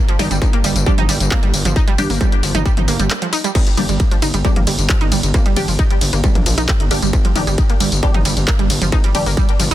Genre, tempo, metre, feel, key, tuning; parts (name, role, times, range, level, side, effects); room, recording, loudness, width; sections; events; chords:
driving peak-time techno; 134 BPM; 4/4; straight; G minor; A4 = 440 Hz
analog pluck; riff; 0.1-9.7 s; F3 to Eb4; -22 LUFS; right 4 dB; chorus, tube saturation, vintage 12-bit sampler grit, sidechain pumping, digital delay
punchy analog drum machine; drums; 0.1-9.7 s; crash cymbal, handclaps, hi-hat, ride cymbal, tambourine, toms; -21 LUFS; left 1 dB; sidechain pumping on hats, sidechain pumping on perc, sidechain pumping on toms, sidechain pumping on cymbals
filtered dub chord stab; stabs; 0.2-9.3 s; G3 to G4; -26 LUFS; left 1 dB; phaser, ensemble chorus, sidechain pumping, ping-pong delay
gritty driven synth bass; bass; 0.2-9.7 s; G1 to Bb1; -19 LUFS; equal; sidechain pumping
electronic kick drum; drums; 0.4-9.5 s; -16 LUFS; equal; distortion
little or no reverb; dense, heavily limited modern master; -13 LUFS; side -14 dB against mid
0.0-9.7 A section
break 3.1-3.6
0.0 G5